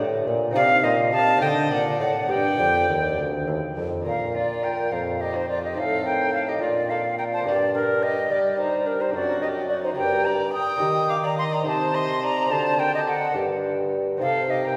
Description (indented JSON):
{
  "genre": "classical, baroque-style sonata movement with continuo",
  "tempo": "70 BPM (dotted quarters)",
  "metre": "6/8",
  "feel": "straight",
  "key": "G minor, Bb major from 4.1 s, G minor from 10.8 s",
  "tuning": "A4 = 440 Hz",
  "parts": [
    { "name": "lute", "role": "accompaniment", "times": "0.0-14.8 s", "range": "D2 to A4", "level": "-32 LUFS", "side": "equal", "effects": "none" },
    { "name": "mellow bassoon", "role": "bass", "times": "0.0-14.8 s", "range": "D2 to G3", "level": "-28 LUFS", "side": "equal", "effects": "none" },
    { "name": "bright concert flute", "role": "melody", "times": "0.6-14.8 s", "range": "Bb4 to Eb6", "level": "-26 LUFS", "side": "equal", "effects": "none" },
    { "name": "dark violin", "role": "second line", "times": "0.6-14.8 s", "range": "D4 to G5", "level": "-33 LUFS", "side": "equal", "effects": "none" }
  ],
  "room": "wet church reverb, RT60 2.9 s",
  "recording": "recorded in a church or concert hall",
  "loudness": "-23 LUFS",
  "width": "mono",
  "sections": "0.0-4.1 A section; 4.1-14.8 A section",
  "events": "none",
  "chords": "0.0 Gm; 0.6 Adim; 1.4 D5; 2.3 Gm; 4.1 Bb; 5.8 F7/A; 6.6 Bb; 7.5 Gm; 9.1 D7/F#; 10.0 Gm; 10.8 Eb; 11.7 Adim/C; 12.5 D7; 13.4 Gm; 14.2 Adim/C",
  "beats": "| 0.56 1.42 | 2.30 3.19 | 4.06 4.92 | 5.78 6.62 | 7.47 8.30 | 9.14 9.97 | 10.81 11.66 | 12.51 13.36 | 14.22"
}